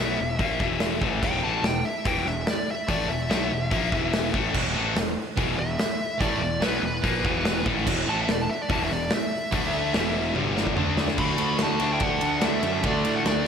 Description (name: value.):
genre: hard rock.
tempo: 145 BPM.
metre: 4/4.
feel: straight.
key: E minor.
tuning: A4 = 440 Hz.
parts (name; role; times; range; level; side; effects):
dark smooth lead guitar; melody; 0.0-13.5 s; B4 to B5; -29 LUFS; equal; overdrive, slapback echo.
cranked stack guitar; riff; 0.0-13.5 s; E2 to D4; -33 LUFS; equal; overdrive, phaser, slapback echo.
distorted electric guitar; riff; 0.0-13.5 s; E2 to D4; -29 LUFS; left 9 dB; overdrive, slapback echo.
fuzz picked electric bass; bass; 0.0-13.4 s; E1 to A2; -31 LUFS; right 1 dB; overdrive.
big rock drum kit; drums; 0.4-13.4 s; crash cymbal, hi-hat, kick drum, ride cymbal, snare drum, toms; -27 LUFS; equal; none.
sludgy distorted guitar; riff; 4.5-13.5 s; E2 to D4; -32 LUFS; right 10 dB; overdrive, slapback echo.
octave-fuzz lead guitar; second line; 11.2-13.5 s; A3 to F#4; -32 LUFS; right 4 dB; distortion, slapback echo.
room: moderate lush hall reverb, RT60 2.1 s.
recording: big arena sound.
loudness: -22 LUFS.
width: side -7 dB against mid.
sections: 0.0-11.2 A section; 11.2-13.5 B section.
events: lead electric guitar solo 0.0-11.2; drum fill 10.4-11.2.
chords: 0.0 E5; 9.5 D5; 9.9 E5; 10.4 G5; 10.8 D5; 11.2 D.